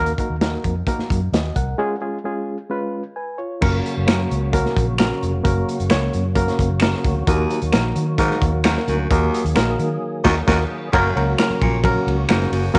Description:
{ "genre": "uptempo 1960s-style soul", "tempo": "131 BPM", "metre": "4/4", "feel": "straight", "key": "F# major", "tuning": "A4 = 439 Hz", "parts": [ { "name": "barky reed electric piano", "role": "accompaniment", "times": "0.0-12.8 s", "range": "F#3 to G#5", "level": "-25 LUFS", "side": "equal", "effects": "harmonic tremolo" }, { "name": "vintage muted fingered electric bass", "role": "bass", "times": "0.0-12.8 s", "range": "E#1 to D#3", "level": "-25 LUFS", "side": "equal", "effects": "none" }, { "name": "crunchy breakbeat drum kit", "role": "drums", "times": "0.1-12.8 s", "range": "crash cymbal, hi-hat, kick drum, ride cymbal, snare drum", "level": "-24 LUFS", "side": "equal", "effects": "none" }, { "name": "percussive tonewheel organ", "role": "sustained chords", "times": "3.6-12.8 s", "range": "C#3 to G#4", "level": "-30 LUFS", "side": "equal", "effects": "chorus vibrato, slow rotary speaker" }, { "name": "finger snaps", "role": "percussion", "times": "4.1-12.4 s", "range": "none", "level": "-30 LUFS", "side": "equal", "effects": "none" }, { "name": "raspy baritone saxophone", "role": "riff", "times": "7.3-12.8 s", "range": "D#2 to A#2", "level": "-27 LUFS", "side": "equal", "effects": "none" } ], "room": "light reverb, studio ambience", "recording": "nothing above 10.3 kHz", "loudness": "-20 LUFS", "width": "mono", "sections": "0.0-3.6 A section; 3.6-10.9 B section; 10.9-12.8 C section", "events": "break 1.8-3.6; band accent 10.0-10.9", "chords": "0.0 D#m; 1.8 C#; 3.6 F#; 7.3 D#m; 10.9 F#" }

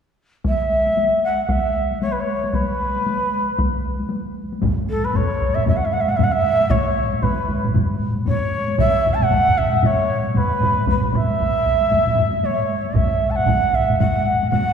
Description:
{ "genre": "japanese traditional, taiko drum ensemble", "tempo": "115 BPM", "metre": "4/4", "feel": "swing 60% on 16ths", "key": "B suspended pentatonic", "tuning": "A4 = 440 Hz", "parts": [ { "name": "solo taiko drums", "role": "percussion", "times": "0.4-14.7 s", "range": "none", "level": "-26 LUFS", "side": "left 1 dB", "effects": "none" }, { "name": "solo taiko drums", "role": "percussion", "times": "0.4-13.9 s", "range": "none", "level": "-26 LUFS", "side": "equal", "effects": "none" }, { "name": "breathy shakuhachi", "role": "melody", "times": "0.5-14.7 s", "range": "A4 to A5", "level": "-19 LUFS", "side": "right 1 dB", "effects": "none" }, { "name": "taiko ensemble", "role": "percussion", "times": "4.6-14.7 s", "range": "none", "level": "-25 LUFS", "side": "left 3 dB", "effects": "none" }, { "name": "taiko ensemble", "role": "percussion", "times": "4.6-14.7 s", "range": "none", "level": "-24 LUFS", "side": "right 3 dB", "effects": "none" } ], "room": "wet concert hall reverb, RT60 2.5 s", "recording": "recorded in a church or concert hall", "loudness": "-17 LUFS", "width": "side -7 dB against mid", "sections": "0.5-4.6 A section; 4.6-14.7 B section", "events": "none", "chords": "none" }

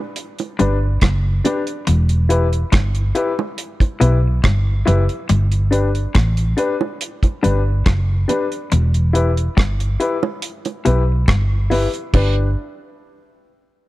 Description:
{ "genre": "roots reggae", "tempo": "70 BPM", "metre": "4/4", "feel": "straight", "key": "G major", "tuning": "A4 = 440 Hz", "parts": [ { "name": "deep reggae drum kit", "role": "drums", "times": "0.2-12.3 s", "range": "crash cymbal, hi-hat, kick drum, rim click", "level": "-18 LUFS", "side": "equal", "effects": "none" }, { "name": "bongos", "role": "percussion", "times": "0.4-12.5 s", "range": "none", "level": "-26 LUFS", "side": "right 7 dB", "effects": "none" }, { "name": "clean electric guitar", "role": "riff", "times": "0.6-11.5 s", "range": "E2 to B2", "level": "-23 LUFS", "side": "left 4 dB", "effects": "none" }, { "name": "dark upright piano", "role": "stabs", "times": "0.6-12.5 s", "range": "D4 to B4", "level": "-22 LUFS", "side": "left 3 dB", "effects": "none" }, { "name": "vintage muted fingered electric bass", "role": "bass", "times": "0.6-12.5 s", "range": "E1 to B1", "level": "-16 LUFS", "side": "equal", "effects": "none" } ], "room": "studio reverb", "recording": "dark, warm production", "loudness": "-15 LUFS", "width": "side -17 dB against mid", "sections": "0.0-12.1 A section; 12.1-13.9 B section", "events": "none", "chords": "0.0 G; 1.9 Em; 5.3 G; 8.7 Em; 12.1 G" }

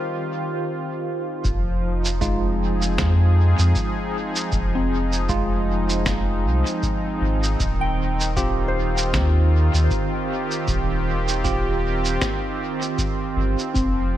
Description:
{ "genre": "ambient dub", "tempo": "78 BPM", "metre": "4/4", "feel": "swing 57% on 16ths", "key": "F minor", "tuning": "A4 = 440 Hz", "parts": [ { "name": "warm analog pad", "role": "sustained chords", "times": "0.0-14.2 s", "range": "Eb3 to Ab4", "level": "-26 LUFS", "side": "right 1 dB", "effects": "chorus, tremolo" }, { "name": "soft synth bell", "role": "arpeggios", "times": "0.0-14.2 s", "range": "C4 to G5", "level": "-32 LUFS", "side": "left 2 dB", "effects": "chorus, phaser, dub echo" }, { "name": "warm sub bass", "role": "bass", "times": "1.4-14.2 s", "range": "Eb1 to F2", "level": "-21 LUFS", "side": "equal", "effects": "none" }, { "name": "electronic kick drum", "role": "drums", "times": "1.4-13.9 s", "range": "none", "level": "-28 LUFS", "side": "equal", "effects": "none" }, { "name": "electronic shaker and snare drum", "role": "drums", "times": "1.4-13.9 s", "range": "none", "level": "-29 LUFS", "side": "right 1 dB", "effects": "dub echo" }, { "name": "bell-like tine electric piano", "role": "stabs", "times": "2.2-13.7 s", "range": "Ab3 to G4", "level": "-29 LUFS", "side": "right 2 dB", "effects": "medium stereo tremolo, dub echo" } ], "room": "little or no reverb", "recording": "none", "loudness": "-19 LUFS", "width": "side -12 dB against mid", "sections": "0.0-1.4 A section; 1.4-14.2 B section", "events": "break 0.0-1.4", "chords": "0.0 Eb69; 1.4 Fm7; 7.6 Eb69" }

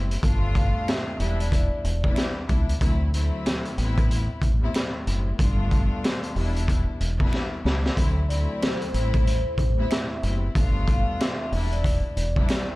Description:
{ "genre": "hip hop, boom-bap hip-hop", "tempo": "93 BPM", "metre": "4/4", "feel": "swing 61% on 16ths", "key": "A minor", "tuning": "A4 = 438 Hz", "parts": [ { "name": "warm studio string section", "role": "accompaniment", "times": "0.0-12.8 s", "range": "D2 to F4", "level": "-31 LUFS", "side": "left 2 dB", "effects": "none" }, { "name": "deep dub fingered electric bass", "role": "bass", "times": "0.0-12.4 s", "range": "E1 to D2", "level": "-24 LUFS", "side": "equal", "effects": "none" }, { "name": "raw garage drum kit", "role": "drums", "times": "0.1-12.7 s", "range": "hi-hat, kick drum, snare drum", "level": "-24 LUFS", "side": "equal", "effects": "vintage 12-bit sampler grit" }, { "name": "vibraphone with soft mallets", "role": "melody", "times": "0.6-2.3, 8.3-12.6 s", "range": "C5 to F5", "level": "-33 LUFS", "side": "left 1 dB", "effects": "digital delay" }, { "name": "finger snap", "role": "percussion", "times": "0.9-12.7 s", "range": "none", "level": "-40 LUFS", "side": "right 5 dB", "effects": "none" } ], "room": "little or no reverb", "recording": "dark, warm production, faint mains hum", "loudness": "-21 LUFS", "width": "side -20 dB against mid", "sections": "0.0-12.8 A section", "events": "drum fill 7.3-8.0", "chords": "0.2 G7; 1.2 Em7; 2.8 D7; 3.8 Am7; 5.4 G7; 6.4 Em7; 8.0 D7; 8.9 Am7; 10.6 G7; 11.5 Em7" }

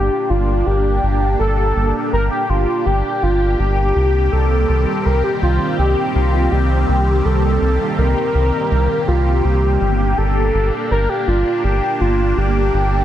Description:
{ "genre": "synthwave", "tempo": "82 BPM", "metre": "4/4", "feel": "straight", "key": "G minor", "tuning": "A4 = 440 Hz", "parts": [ { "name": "warm velvety synth lead", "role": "melody", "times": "0.0-13.0 s", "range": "F4 to Bb4", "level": "-19 LUFS", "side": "equal", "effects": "chorus, digital delay" }, { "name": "lush unison pad", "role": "sustained chords", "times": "0.0-13.0 s", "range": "Eb3 to A4", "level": "-21 LUFS", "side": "equal", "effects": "chorus, phaser" }, { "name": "round analog bass", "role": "bass", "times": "0.0-13.0 s", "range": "G1 to C2", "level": "-17 LUFS", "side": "equal", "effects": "tube saturation" } ], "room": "moderate concert hall reverb, RT60 1.8 s", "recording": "dense, heavily limited modern master", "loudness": "-14 LUFS", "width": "side -11 dB against mid", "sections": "0.0-13.0 A section", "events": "none", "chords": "0.0 Gm; 4.0 Cm7; 9.8 Gm" }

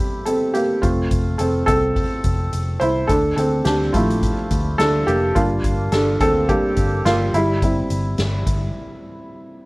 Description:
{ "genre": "piano-driven pop", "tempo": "106 BPM", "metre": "4/4", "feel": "swing 56% on 16ths", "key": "F major", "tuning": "A4 = 439 Hz", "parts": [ { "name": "felt-muted upright piano", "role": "accompaniment", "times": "0.0-9.7 s", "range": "F3 to C5", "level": "-19 LUFS", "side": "right 1 dB", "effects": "none" }, { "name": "soft-mallet drum kit", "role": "drums", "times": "0.3-8.6 s", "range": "hi-hat, kick drum, snare drum", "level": "-24 LUFS", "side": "equal", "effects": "none" }, { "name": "vintage muted picked electric bass", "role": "bass", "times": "0.8-8.7 s", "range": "F1 to A2", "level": "-22 LUFS", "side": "equal", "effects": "none" } ], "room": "moderate studio reverb, RT60 0.6 s", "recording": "worn, warbling old tape, cassette tape, warbly pitch drift", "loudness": "-16 LUFS", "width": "side -23 dB against mid", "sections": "0.0-9.7 A section", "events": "felt piano solo 0.0-9.7; break 8.8-9.7", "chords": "0.0 C/G; 0.8 F; 3.1 Dmadd9; 5.4 Gm; 7.3 C/G" }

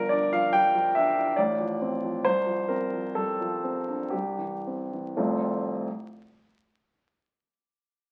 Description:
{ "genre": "classical, romantic character piece for solo piano", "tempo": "53-72 BPM", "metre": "3/4", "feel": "rubato", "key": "F major", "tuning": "A4 = 440 Hz", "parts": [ { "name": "warm grand piano", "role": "solo", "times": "0.0-5.9 s", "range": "F1 to G5", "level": "-27 LUFS", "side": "equal", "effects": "none" } ], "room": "moderate large studio reverb, RT60 0.9 s", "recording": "very old 78 rpm record, vinyl crackle", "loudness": "-27 LUFS", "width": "mono", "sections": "0.0-5.2 A section; 5.2-8.0 B section", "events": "slowing down 0.0-5.2", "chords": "0.0 G5; 1.4 F/A; 2.2 Csus4; 4.1 C; 5.2 F" }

